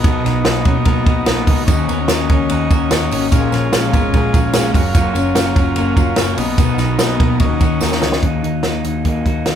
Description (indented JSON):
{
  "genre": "jangly indie pop",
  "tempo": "147 BPM",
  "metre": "4/4",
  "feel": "straight",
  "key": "Eb minor",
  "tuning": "A4 = 440 Hz",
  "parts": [
    { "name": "combo organ", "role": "accompaniment", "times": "0.0-8.2 s", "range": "B3 to Bb5", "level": "-24 LUFS", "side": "left 1 dB", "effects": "none" },
    { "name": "electric guitar through a small old amp", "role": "accompaniment", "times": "0.0-9.6 s", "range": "Bb2 to A#4", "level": "-22 LUFS", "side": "right 1 dB", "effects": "none" },
    { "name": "twelve-string electric guitar", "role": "arpeggios", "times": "0.0-9.6 s", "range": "Bb2 to F#4", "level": "-20 LUFS", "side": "left 4 dB", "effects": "none" },
    { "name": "vintage muted picked electric bass", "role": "bass", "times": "0.0-9.6 s", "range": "Gb1 to Eb2", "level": "-22 LUFS", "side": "right 1 dB", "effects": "none" },
    { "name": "compact cocktail drum kit", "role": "drums", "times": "0.0-9.6 s", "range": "hi-hat, kick drum, ride cymbal, snare drum", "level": "-16 LUFS", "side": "right 1 dB", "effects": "none" },
    { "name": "tambourine", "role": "percussion", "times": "1.7-8.1 s", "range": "none", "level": "-32 LUFS", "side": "right 5 dB", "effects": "none" }
  ],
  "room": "moderate large studio reverb, RT60 0.8 s",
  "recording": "band playing live in one room",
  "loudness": "-13 LUFS",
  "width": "side -9 dB against mid",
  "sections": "0.0-8.2 A section; 8.2-9.6 B section",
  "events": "transistor combo organ fill 7.4-8.2; drum fill 7.8-8.2",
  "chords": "0.0 Bmaj7; 1.7 Ebm7; 3.3 Bbm7; 4.7 Gbmaj7; 6.4 Bmaj7; 7.4 Ebm7; 8.2 Ebm",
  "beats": "| 0.04 0.45 0.86 1.27 | 1.68 2.09 2.50 2.90 | 3.31 3.72 4.13 4.54 | 4.95 5.36 5.77 6.18 | 6.58 6.99 7.40 7.81 | 8.22 8.64 9.05 9.46"
}